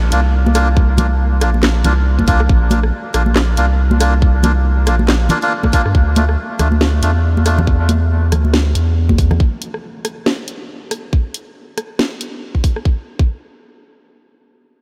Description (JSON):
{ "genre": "deep dubstep", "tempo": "139 BPM", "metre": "4/4", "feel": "swing 58% on 16ths, half-time", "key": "unclear", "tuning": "A4 = 440 Hz", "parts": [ { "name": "saturated sub bass", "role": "bass", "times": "0.0-9.4 s", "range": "Bb1 to G2", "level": "-16 LUFS", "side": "equal", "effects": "none" }, { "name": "melodica", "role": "stabs", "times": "0.1-7.6 s", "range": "A3 to F4", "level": "-23 LUFS", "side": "equal", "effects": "dub echo" }, { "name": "garage drum kit", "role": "drums", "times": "0.1-12.8 s", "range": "handclaps, hi-hat, rim click, snare drum", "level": "-23 LUFS", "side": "equal", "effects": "none" }, { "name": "congas", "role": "percussion", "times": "0.5-9.4 s", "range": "none", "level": "-24 LUFS", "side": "equal", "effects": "dub echo" }, { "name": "electronic kick drum", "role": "drums", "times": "0.8-13.3 s", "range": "none", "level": "-16 LUFS", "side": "equal", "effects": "none" } ], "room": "light reverb", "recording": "none", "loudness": "-15 LUFS", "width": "mono", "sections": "0.0-5.9 A section; 5.9-12.9 B section; 12.9-14.8 C section", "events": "drop 0.0-5.9", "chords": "0.0 Bb; 5.9 N.C." }